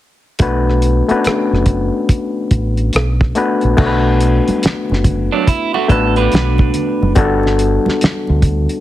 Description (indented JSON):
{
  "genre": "R&B, neo-soul",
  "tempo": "71 BPM",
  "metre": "4/4",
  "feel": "swing 64% on 16ths",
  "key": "unclear",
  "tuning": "A4 = 440 Hz",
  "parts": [
    { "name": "overdriven reed electric piano", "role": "accompaniment", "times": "0.4-8.8 s", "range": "G3 to B4", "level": "-16 LUFS", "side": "left 3 dB", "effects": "none" },
    { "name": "deep dub fingered electric bass", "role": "bass", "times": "0.4-8.7 s", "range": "F#1 to D2", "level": "-16 LUFS", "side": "equal", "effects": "none" },
    { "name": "cloth-damped thuddy drum kit", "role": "drums", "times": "0.4-8.8 s", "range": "crash cymbal, hi-hat, kick drum, rim click, snare drum", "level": "-15 LUFS", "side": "equal", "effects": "none" },
    { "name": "congas", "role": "percussion", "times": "3.8-8.7 s", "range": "none", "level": "-25 LUFS", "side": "right 3 dB", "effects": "none" },
    { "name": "electric guitar through a small old amp", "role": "second line", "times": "5.3-7.1 s", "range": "F#3 to B4", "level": "-17 LUFS", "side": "right 8 dB", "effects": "none" }
  ],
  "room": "little or no reverb",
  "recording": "heavily compressed radio sound, multiband compression",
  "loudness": "-12 LUFS",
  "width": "side -14 dB against mid",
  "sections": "0.4-3.8 A section; 3.8-8.8 B section",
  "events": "none",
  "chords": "0.4 Bm7; 7.2 Gmaj9"
}